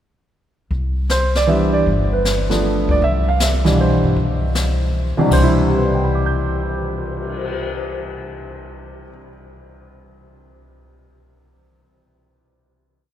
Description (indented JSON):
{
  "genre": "jazz piano trio",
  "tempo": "157 BPM",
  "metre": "3/4",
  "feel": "swing 66% on 8ths",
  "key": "C major",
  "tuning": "A4 = 440 Hz",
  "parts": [
    { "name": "upright bass", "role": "bass", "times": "0.7-9.1 s", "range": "G1 to G2", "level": "-21 LUFS", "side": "equal", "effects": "none" },
    { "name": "jazz brush drum kit", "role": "drums", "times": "0.7-7.5 s", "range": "brushed snare drum, crash cymbal, cymbal swell, hi-hat, kick drum, snare drum", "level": "-26 LUFS", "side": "left 2 dB", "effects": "none" },
    { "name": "warm grand piano", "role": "melody", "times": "1.1-9.3 s", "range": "C2 to G6", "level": "-18 LUFS", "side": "right 1 dB", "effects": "none" }
  ],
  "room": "wet cathedral reverb, RT60 6.2 s",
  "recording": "recorded in a church or concert hall",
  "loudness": "-15 LUFS",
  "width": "side -10 dB against mid",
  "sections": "0.7-5.3 A section; 5.3-7.6 final chord",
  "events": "none",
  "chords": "0.7 Cmaj7; 1.9 G7; 3.0 Cmaj7"
}